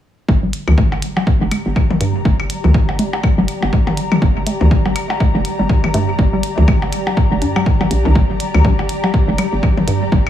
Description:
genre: minimal techno.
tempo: 122 BPM.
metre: 4/4.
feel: swing 59% on 16ths.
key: G minor.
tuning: A4 = 437 Hz.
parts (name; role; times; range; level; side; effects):
hollow knocking FM bass; bass; 0.3-10.2 s; F1 to G2; -15 LUFS; equal; sidechain pumping.
electronic kick drum; drums; 0.3-10.2 s; none; -16 LUFS; equal; overdrive.
ethereal airy pad; texture; 1.5-10.3 s; G4 to Bb5; -25 LUFS; left 2 dB; ensemble chorus, built-in reverb, sidechain pumping.
swarming drone; texture; 1.4-10.3 s; G4; -31 LUFS; left 2 dB; built-in reverb, sidechain pumping.
hollow square pluck; riff; 0.4-10.2 s; G3 to D4; -22 LUFS; equal; chorus, vintage 12-bit sampler grit, sidechain pumping, analog delay.
electronic hi-hat; drums; 0.5-10.0 s; none; -28 LUFS; right 2 dB; overdrive.
electronic toms and percussion blips; percussion; 0.7-10.3 s; none; -22 LUFS; left 3 dB; dub echo.
room: light reverb.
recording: echo-heavy mix, studio reverb.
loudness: -13 LUFS.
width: side -11 dB against mid.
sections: 0.3-10.3 A section.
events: filter sweep on synth arpeggio sound 0.3-10.3.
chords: 0.3 Gm.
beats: | 0.28 0.78 1.27 1.76 | 2.25 2.74 3.24 3.73 | 4.22 4.71 5.20 5.70 | 6.19 6.68 7.17 7.66 | 8.15 8.65 9.14 9.63 | 10.12.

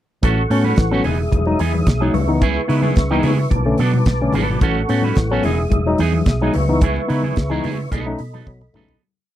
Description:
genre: disco.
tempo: 109 BPM.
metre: 4/4.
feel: straight.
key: E major.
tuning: A4 = 440 Hz.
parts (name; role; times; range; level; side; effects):
barky tine electric piano; accompaniment; 0.2-8.9 s; A2 to D#4; -21 LUFS; left 3 dB; overdrive.
electric guitar with an envelope filter; accompaniment; 0.2-9.0 s; E3 to B4; -24 LUFS; right 7 dB; none.
percussive tonewheel organ; sustained chords; 0.2-9.0 s; G#4 to D#6; -25 LUFS; equal; chorus vibrato, slow rotary speaker.
hollow-body short-scale fingered electric bass; bass; 0.2-9.0 s; E1 to C#3; -20 LUFS; equal; none.
damped 70s drum kit; drums; 0.2-9.0 s; hi-hat, kick drum, snare drum, toms; -16 LUFS; equal; none.
congas; percussion; 0.2-8.9 s; none; -27 LUFS; left 6 dB; none.
room: little or no reverb.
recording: dry, close 1970s-style studio recording.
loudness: -15 LUFS.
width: side -12 dB against mid.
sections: 0.2-9.0 verse.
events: fade-out 6.8-9.0; drum fill 8.5-9.0.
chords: 0.2 A6; 1.1 Emaj7; 2.1 C#m7; 3.5 Bm7; 4.6 A6; 5.4 Emaj7; 6.5 C#m7; 7.9 B7.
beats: | 0.23 0.78 1.33 1.88 | 2.42 2.97 3.52 4.07 | 4.62 5.17 5.72 6.27 | 6.82 7.37 7.92 8.47.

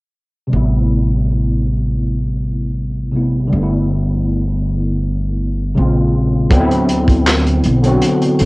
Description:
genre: R&B, neo-soul.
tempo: 80 BPM.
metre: 4/4.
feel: swing 53% on 16ths.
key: unclear.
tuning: A4 = 439 Hz.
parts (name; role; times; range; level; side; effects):
overdriven tine electric piano; accompaniment; 0.5-8.5 s; C3 to A4; -16 LUFS; equal; ensemble chorus, cassette tape.
upright bass; bass; 0.5-8.5 s; G1 to D2; -18 LUFS; equal; none.
crunchy breakbeat drum kit; drums; 6.5-8.5 s; handclaps, hi-hat, kick drum, snare drum; -16 LUFS; equal; cassette tape.
room: light reverb.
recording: home recording on cassette.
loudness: -13 LUFS.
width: side -24 dB against mid.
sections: 0.5-6.5 A section; 6.5-8.5 B section.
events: none.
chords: 0.5 Am9; 3.5 G69; 5.8 Bbm9; 6.5 D13.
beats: | 0.50 1.25 2.00 2.75 | 3.50 4.25 5.00 5.75 | 6.50 7.25 8.00.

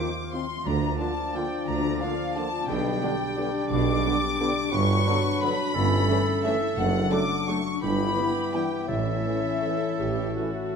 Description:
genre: classical, orchestral ballroom waltz.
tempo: 152-191 BPM.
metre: 3/4.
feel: rubato.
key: unclear.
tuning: A4 = 441 Hz.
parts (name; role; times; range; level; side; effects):
warm chamber violin section; melody; 0.0-10.8 s; E5 to D6; -33 LUFS; left 5 dB; none.
clear oboe; second line; 0.0-10.8 s; G4 to D5; -37 LUFS; right 2 dB; none.
clear studio violin section; second line; 0.0-10.8 s; E5 to D6; -36 LUFS; left 1 dB; none.
mellow clarinet; second line; 0.0-10.8 s; C#4 to F4; -33 LUFS; left 2 dB; none.
mellow hollow silver concert flute; second line; 0.0-10.8 s; E5 to D6; -34 LUFS; left 3 dB; none.
dark chamber viola section; accompaniment; 0.0-10.8 s; B3 to B4; -35 LUFS; right 2 dB; none.
warm bassoon; accompaniment; 0.0-10.8 s; F3 to C#4; -33 LUFS; right 2 dB; none.
bright trombone section; sustained chords; 0.0-10.5 s; D3 to A3; -36 LUFS; right 4 dB; none.
dark French horn section; sustained chords; 0.0-10.8 s; A3 to F4; -36 LUFS; left 6 dB; none.
concert harp; arpeggios; 0.0-10.8 s; F#2 to F6; -33 LUFS; left 11 dB; none.
clear tuba; bass; 0.7-10.3 s; F#1 to D2; -34 LUFS; right 6 dB; none.
dark symphonic double bass section; bass; 0.7-10.3 s; F#1 to D2; -32 LUFS; right 4 dB; none.
rich symphonic cello section; bass; 0.7-10.3 s; F#2 to D3; -32 LUFS; right 3 dB; none.
timpani; percussion; 0.7-1.1, 8.9-9.4 s; A2 to D3; -35 LUFS; right 5 dB; none.
room: moderate concert hall reverb, RT60 1.8 s.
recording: none.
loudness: -23 LUFS.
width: side -6 dB against mid.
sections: 0.0-10.8 A section.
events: none.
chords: 0.0 F7/Eb; 0.7 Bb/D; 2.7 G/B; 4.7 Gmaj7; 5.8 A7/G; 6.8 D/F#; 7.8 Em/G; 8.9 A.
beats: 0.34 | 0.66 1.00 1.35 | 1.68 2.01 2.36 | 2.68 3.02 3.37 | 3.71 4.05 4.40 | 4.73 5.06 5.42 | 5.75 6.09 6.45 | 6.78 7.12 7.48 | 7.82 8.17 8.54 | 8.89 9.26 9.64 | 10.00 10.36 10.74.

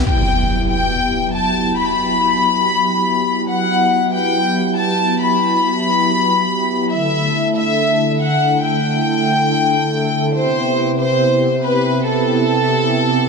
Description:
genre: trance.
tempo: 140 BPM.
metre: 4/4.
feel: straight.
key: E minor.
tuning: A4 = 440 Hz.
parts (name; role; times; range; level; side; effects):
warm studio violin section; second line; 0.1-13.3 s; A4 to B5; -16 LUFS; left 2 dB; digital delay.
lush unison pad; sustained chords; 0.1-13.3 s; C3 to A4; -18 LUFS; right 1 dB; chorus.
impact; sound effects; 0.1-1.8 s; none; -22 LUFS; equal; none.
room: moderate huge ambient reverb, RT60 4.4 s.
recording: dark, warm production.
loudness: -14 LUFS.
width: side -4 dB against mid.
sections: 0.1-13.3 A section.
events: impact 0.1-1.8.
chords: 0.1 Emadd9; 6.9 Dsus2; 10.3 Cmaj7.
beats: | 0.07 0.49 0.92 1.35 | 1.78 2.21 2.64 3.06 | 3.49 3.92 4.35 4.78 | 5.21 5.64 6.07 6.49 | 6.92 7.35 7.78 8.21 | 8.64 9.06 9.49 9.92 | 10.35 10.78 11.21 11.64 | 12.06 12.49 12.92.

